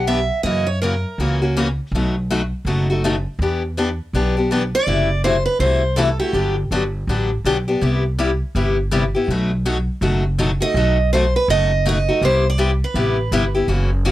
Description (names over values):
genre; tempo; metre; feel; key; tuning
acoustic string swing (jazz manouche); 163 BPM; 4/4; swing 60% on 8ths; unclear; A4 = 440 Hz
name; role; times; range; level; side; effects
picked steel-string acoustic guitar; melody; 0.0-1.5, 4.7-6.5, 10.6-13.5 s; G4 to E5; -20 LUFS; right 2 dB; none
picked steel-string acoustic guitar; accompaniment; 0.0-14.1 s; B2 to G4; -20 LUFS; left 2 dB; none
upright bass; bass; 0.0-14.1 s; F#1 to F#2; -20 LUFS; equal; none
room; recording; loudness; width
little or no reverb; dry, close 1970s-style studio recording; -16 LUFS; side -15 dB against mid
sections
0.0-4.9 A section; 4.9-14.1 B section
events
none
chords
0.4 F#7; 1.9 B7; 3.4 Em7; 4.9 F#m7b5; 6.3 Gmaj7; 7.8 Cmaj7; 9.3 B7; 12.2 Cmaj7